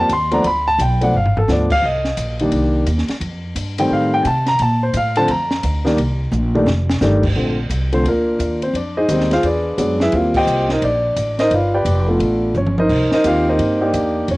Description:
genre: jazz piano trio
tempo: 173 BPM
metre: 4/4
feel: swing 64% on 8ths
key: Bb major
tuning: A4 = 440 Hz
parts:
  - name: warm grand piano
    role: melody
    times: 0.0-14.4 s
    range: D3 to C6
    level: -16 LUFS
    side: equal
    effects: cassette tape
  - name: upright bass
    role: bass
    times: 0.0-14.4 s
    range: F1 to C3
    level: -20 LUFS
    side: equal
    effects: tube saturation
  - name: compact cocktail drum kit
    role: drums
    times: 0.1-14.4 s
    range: crash cymbal, hi-hat, kick drum, ride cymbal, snare drum, toms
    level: -25 LUFS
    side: equal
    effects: cassette tape
room: light reverb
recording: home recording on cassette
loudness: -15 LUFS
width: side -20 dB against mid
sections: 0.0-7.4 A section; 7.4-14.4 B section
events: grand piano solo 0.0-7.4; drum fill 1.1-1.5, 6.3-7.0, 12.6-12.9; band accent 10.3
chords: 0.4 G7; 1.8 Cm7; 3.2 F7; 4.6 Bbmaj7; 6.0 C7(no3); 6.7 F13; 7.4 Bbmaj7; 8.7 Fm7; 9.4 E9; 10.1 Eb6; 11.5 G7; 12.9 Cm7

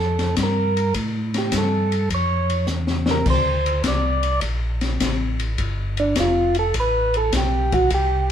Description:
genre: soul jazz organ trio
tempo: 104 BPM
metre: 4/4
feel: swing 69% on 8ths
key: unclear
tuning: A4 = 439 Hz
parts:
  - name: percussive tonewheel organ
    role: melody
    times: 0.0-8.3 s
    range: D4 to D5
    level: -21 LUFS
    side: right 2 dB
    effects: slow rotary speaker
  - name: mellow tonewheel organ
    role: bass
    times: 0.0-8.3 s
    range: F1 to A2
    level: -23 LUFS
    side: equal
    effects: chorus vibrato, slow rotary speaker
  - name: open jazz drum kit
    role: drums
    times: 0.2-8.3 s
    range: crash cymbal, hi-hat, kick drum, ride cymbal, snare drum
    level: -25 LUFS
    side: left 3 dB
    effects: none
room: light reverb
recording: band playing live in one room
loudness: -18 LUFS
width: side -9 dB against mid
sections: 0.0-8.3 A section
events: tonewheel organ solo 0.0-8.3; drum fill 2.7-3.3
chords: 0.0 C7(no3) (rootless); 1.0 A7; 3.3 D5; 5.6 G9

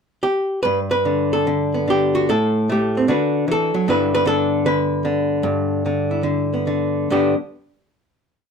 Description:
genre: solo jazz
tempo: 150 BPM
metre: 4/4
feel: swing 65% on 8ths, rubato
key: G major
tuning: A4 = 437 Hz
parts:
  - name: archtop guitar, miked and amplified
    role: solo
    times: 0.2-7.3 s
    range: G2 to B4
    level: -17 LUFS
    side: equal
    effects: none
room: moderate studio reverb, RT60 0.6 s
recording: dark, warm production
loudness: -17 LUFS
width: side -6 dB against mid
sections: 0.0-0.6 pickup bar; 0.6-7.1 A section; 7.1-8.5 final chord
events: none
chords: 0.0 N.C.; 0.6 G; 2.3 Am7; 3.1 D69; 3.9 G6; 7.1 G

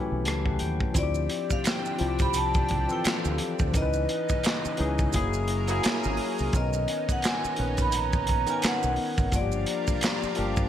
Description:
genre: R&B, neo-soul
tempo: 86 BPM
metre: 4/4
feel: swing 57% on 16ths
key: unclear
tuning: A4 = 440 Hz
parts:
  - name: vibraphone with medium hard mallets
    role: melody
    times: 0.0-10.3 s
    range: D5 to B5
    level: -31 LUFS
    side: equal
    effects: none
  - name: barky tine electric piano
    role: accompaniment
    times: 0.0-10.7 s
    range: D#3 to B5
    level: -30 LUFS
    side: left 4 dB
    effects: analog chorus
  - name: deep dub fingered electric bass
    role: bass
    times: 0.1-10.7 s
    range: F#1 to Eb2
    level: -30 LUFS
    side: equal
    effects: none
  - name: crunchy breakbeat drum kit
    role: drums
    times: 0.3-10.7 s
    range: handclaps, hi-hat, kick drum, rim click, snare drum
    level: -28 LUFS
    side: equal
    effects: gated reverb
  - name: lush unison pad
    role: sustained chords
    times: 0.9-10.7 s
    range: C#3 to A#4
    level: -37 LUFS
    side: right 2 dB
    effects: chorus
  - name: maracas and finger snaps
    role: percussion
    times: 1.0-10.7 s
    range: none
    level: -37 LUFS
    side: right 9 dB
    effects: none
  - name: electric guitar through a small old amp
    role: second line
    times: 5.7-6.5 s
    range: G#3 to F#4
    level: -36 LUFS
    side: right 8 dB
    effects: analog chorus
room: light reverb, small room ambience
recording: bright 1980s-style digital production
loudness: -24 LUFS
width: side -10 dB against mid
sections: 0.9-10.7 A section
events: tine electric piano fill 0.0-0.9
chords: 0.0 A7; 0.9 Dm11; 3.7 C#m9; 5.1 F#9; 6.5 Bmaj9; 9.3 Gm7

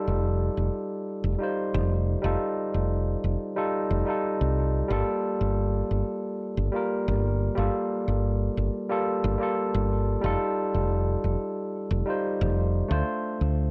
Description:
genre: sunset chillout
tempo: 90 BPM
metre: 4/4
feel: straight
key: unclear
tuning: A4 = 440 Hz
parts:
  - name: barky tine electric piano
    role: accompaniment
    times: 0.0-13.7 s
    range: G3 to C5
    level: -30 LUFS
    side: equal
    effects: low-pass filter, digital delay
  - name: woody fretless electric bass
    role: bass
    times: 0.1-13.7 s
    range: F1 to D2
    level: -28 LUFS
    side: equal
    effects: none
room: light reverb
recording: none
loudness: -27 LUFS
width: mono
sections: 0.0-13.7 A section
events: filter sweep on tine electric piano 0.0-13.7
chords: 0.0 F9; 4.9 Gm9; 10.2 F9; 12.9 Dm7

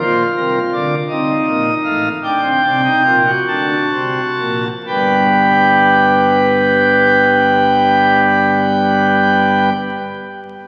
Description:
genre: classical, baroque-style 3-part fugue for pipe organ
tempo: 40-57 BPM (dotted quarters)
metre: 6/8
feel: straight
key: unclear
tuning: A4 = 441 Hz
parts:
  - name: pipe organ, plenum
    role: solo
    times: 0.0-9.7 s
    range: G1 to A5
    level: -14 LUFS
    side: equal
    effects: none
room: wet church reverb, RT60 3.5 s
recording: very old 78 rpm record, vinyl crackle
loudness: -14 LUFS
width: mono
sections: 0.0-4.9 A section; 4.9-10.7 B section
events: slowing down 0.0-4.9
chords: 0.0 Bb; 1.1 Cm; 2.2 Gm; 3.5 D7; 4.9 G

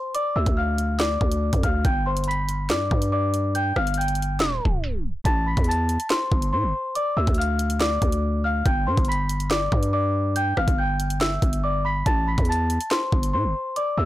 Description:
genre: hip hop, drill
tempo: 141 BPM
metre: 4/4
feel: half-time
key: A minor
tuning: A4 = 440 Hz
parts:
  - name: celesta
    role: melody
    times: 0.0-14.1 s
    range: C5 to B6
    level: -25 LUFS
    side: left 1 dB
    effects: low-pass filter
  - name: drill drum kit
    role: drums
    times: 0.1-13.9 s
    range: handclaps, hi-hat, kick drum, rim click, snare drum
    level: -24 LUFS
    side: equal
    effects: none
  - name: growling 808-style bass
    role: bass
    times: 0.4-14.1 s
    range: G1 to A2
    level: -24 LUFS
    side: equal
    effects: none
room: little or no reverb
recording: blown-out, overdriven recording, overdrive, tape stop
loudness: -20 LUFS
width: side -15 dB against mid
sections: 0.0-5.3 A section; 5.3-14.1 B section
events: tape stop 4.4-5.3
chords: 0.1 Dm; 1.8 G; 5.3 Am; 7.0 Dm; 8.7 G; 12.1 Am

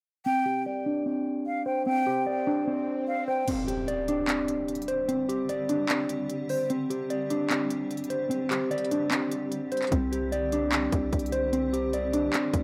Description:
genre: hip hop, trap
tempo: 149 BPM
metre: 4/4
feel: half-time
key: unclear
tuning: A4 = 440 Hz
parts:
  - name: breathy jazz flute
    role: second line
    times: 0.3-3.5 s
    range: F5 to G5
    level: -33 LUFS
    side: equal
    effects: delay
  - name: mellow electric guitar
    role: arpeggios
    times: 0.3-12.6 s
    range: C4 to D5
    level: -30 LUFS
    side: equal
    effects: low-pass filter, delay
  - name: swell and impact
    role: sound effects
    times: 2.2-5.1 s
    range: none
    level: -40 LUFS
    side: equal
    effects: none
  - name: granular cloud pad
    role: sustained chords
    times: 4.6-12.6 s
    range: D3 to G4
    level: -41 LUFS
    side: equal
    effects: built-in reverb
  - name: trap drum kit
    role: drums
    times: 3.5-12.6 s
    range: crash cymbal, handclaps, hi-hat, kick drum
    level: -33 LUFS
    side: equal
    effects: none
  - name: long sustained 808-style bass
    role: bass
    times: 9.9-12.6 s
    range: C2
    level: -36 LUFS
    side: equal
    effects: none
room: light reverb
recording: rough home demo mix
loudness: -28 LUFS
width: mono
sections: 0.3-3.5 A section; 3.5-12.6 B section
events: filter sweep on clean electric guitar 0.3-3.5; swell 2.2-3.5; kick muted 3.5-9.9; impact 3.5-5.1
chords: 0.3 Csus2

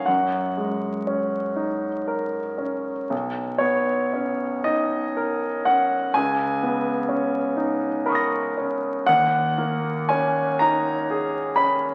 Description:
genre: classical, impressionist solo piano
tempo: 40 BPM (dotted quarters)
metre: 6/8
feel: uneven beats, rubato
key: unclear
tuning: A4 = 440 Hz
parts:
  - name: clear concert grand piano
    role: solo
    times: 0.0-11.9 s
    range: B1 to A#6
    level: -23 LUFS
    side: equal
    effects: none
room: wet recital hall reverb, RT60 1.6 s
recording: very old 78 rpm record, vinyl crackle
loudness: -23 LUFS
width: mono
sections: 0.0-11.9 A section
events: none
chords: 0.1 F#69; 3.1 Bmaj9; 6.1 C#sus2; 9.1 D#7sus4

